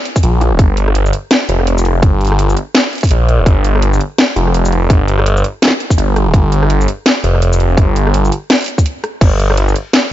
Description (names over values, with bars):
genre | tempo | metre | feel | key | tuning
half-time drum and bass | 167 BPM | 4/4 | swing 60% on 16ths, half-time | unclear | A4 = 440 Hz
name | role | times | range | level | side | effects
drum and bass drum kit | drums | 0.1-10.0 s | crash cymbal, hi-hat, rim click, shaker, snare drum | -15 LUFS | equal | overdrive, small room reverb
phased detuned saw bass | bass | 0.2-9.7 s | D1 to Bb1 | -11 LUFS | equal | phaser
electronic kick drum | drums | 0.2-9.3 s | none | -10 LUFS | equal | overdrive, small room reverb
room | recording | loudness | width
digital ambience | nothing above 7.6 kHz | -10 LUFS | side -13 dB against mid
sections
0.0-10.1 A section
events
break 8.9-9.2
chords
none